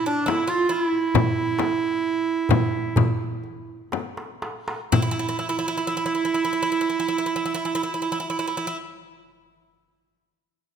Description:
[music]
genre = Turkish makam ensemble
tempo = 58-70 BPM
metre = 4/4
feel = straight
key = unclear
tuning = A4 = 439 Hz
[part]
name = clear clarinet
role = melody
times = 0.0-9.2 s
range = D4 to F4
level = -24 LUFS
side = right 5 dB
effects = none
[part]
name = Greek bouzouki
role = second line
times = 0.0-8.8 s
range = D4 to F4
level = -27 LUFS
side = right 2 dB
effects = none
[part]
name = darbuka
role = percussion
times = 0.3-5.4 s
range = none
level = -26 LUFS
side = right 1 dB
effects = none
[part]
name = frame drum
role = percussion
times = 0.3-5.4 s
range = none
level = -25 LUFS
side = left 10 dB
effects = none
[sound]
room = moderate scoring stage reverb, RT60 1.9 s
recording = none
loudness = -21 LUFS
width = side -7 dB against mid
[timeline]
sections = 0.0-4.9 A section; 4.9-9.0 B section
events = slowing down 0.0-4.9; drum fill 3.9-4.9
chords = none

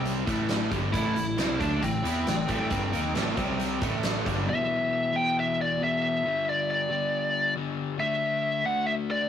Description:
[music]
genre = hard rock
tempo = 136 BPM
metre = 4/4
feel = straight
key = A minor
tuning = A4 = 438 Hz
[part]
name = biting lead guitar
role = melody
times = 0.0-9.3 s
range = C4 to G5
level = -27 LUFS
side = equal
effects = overdrive
[part]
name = cranked stack guitar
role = riff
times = 0.0-4.5 s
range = G2 to E4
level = -33 LUFS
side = right 6 dB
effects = overdrive
[part]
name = crunchy overdriven guitar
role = riff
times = 0.0-9.3 s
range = E2 to E4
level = -31 LUFS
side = left 5 dB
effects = none
[part]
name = distorted electric guitar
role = riff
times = 0.0-4.5 s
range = G2 to E4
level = -34 LUFS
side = equal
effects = distortion
[part]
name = picked electric bass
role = bass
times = 0.0-4.5 s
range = G1 to E2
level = -33 LUFS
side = right 1 dB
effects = none
[part]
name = big rock drum kit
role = drums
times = 0.1-4.4 s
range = hi-hat, kick drum, snare drum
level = -31 LUFS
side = right 1 dB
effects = none
[sound]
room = moderate stone room reverb, RT60 1.2 s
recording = rough rehearsal-room recording, tube saturation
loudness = -24 LUFS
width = side -9 dB against mid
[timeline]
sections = 0.0-4.5 A section; 4.5-9.3 B section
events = none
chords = 0.3 Am; 3.4 C5; 3.8 A5; 4.5 E5; 6.2 G5; 8.0 D5

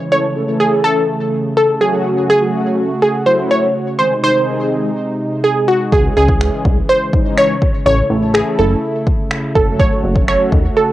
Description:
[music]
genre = dance-pop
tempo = 124 BPM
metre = 4/4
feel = straight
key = unclear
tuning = A4 = 439 Hz
[part]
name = analog pluck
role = melody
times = 0.0-10.9 s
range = F#4 to C#5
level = -15 LUFS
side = right 1 dB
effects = chorus
[part]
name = warm analog pad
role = sustained chords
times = 0.0-10.9 s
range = B#2 to F#4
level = -21 LUFS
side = right 1 dB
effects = chorus, sidechain pumping, cassette tape
[part]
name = mellow synth brass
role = accompaniment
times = 0.1-10.6 s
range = D#3 to A4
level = -21 LUFS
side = left 1 dB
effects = chorus, sidechain pumping, cassette tape
[part]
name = chorused synth bass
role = bass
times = 5.9-10.7 s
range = F#1 to D#2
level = -16 LUFS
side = equal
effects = sidechain pumping
[part]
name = punchy analog drum machine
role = drums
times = 5.9-10.6 s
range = finger snaps, kick drum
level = -16 LUFS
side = equal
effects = cassette tape
[sound]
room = light reverb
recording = home recording on cassette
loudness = -12 LUFS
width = side -14 dB against mid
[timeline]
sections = 0.0-10.9 A section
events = none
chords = 0.1 A; 1.8 F#m; 4.0 G#; 5.9 C#m; 7.9 A; 9.6 F#m

